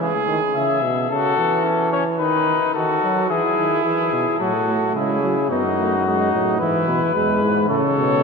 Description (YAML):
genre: classical, imitative canzona for brass ensemble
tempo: 109 BPM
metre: 4/4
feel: straight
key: unclear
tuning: A4 = 444 Hz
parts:
  - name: clear trumpet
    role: second line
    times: 0.0-8.2 s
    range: C#4 to B4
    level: -23 LUFS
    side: right 5 dB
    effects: none
  - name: brilliant bass trombone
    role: bass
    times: 0.0-8.2 s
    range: E2 to F#3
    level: -24 LUFS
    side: right 2 dB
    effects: none
  - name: mellow trumpet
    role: melody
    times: 0.6-8.2 s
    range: F#4 to E5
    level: -21 LUFS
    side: left 8 dB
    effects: none
  - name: mellow trombone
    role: accompaniment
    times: 4.4-8.2 s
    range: C#3 to B3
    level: -23 LUFS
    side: equal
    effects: none
room: wet cathedral reverb, RT60 4.6 s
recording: minimal, uncompressed stereo recording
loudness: -17 LUFS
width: side -4 dB against mid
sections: 0.0-4.4 A section; 4.4-8.2 B section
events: none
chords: 0.0 E; 1.1 F#m/C#; 2.2 B/D#; 3.3 E; 4.4 F#m/A; 5.5 B/F# (rootless); 6.6 E/G#; 7.7 A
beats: | 0.01 0.56 1.11 1.66 | 2.20 2.75 3.30 3.85 | 4.40 4.96 5.51 6.06 | 6.61 7.15 7.70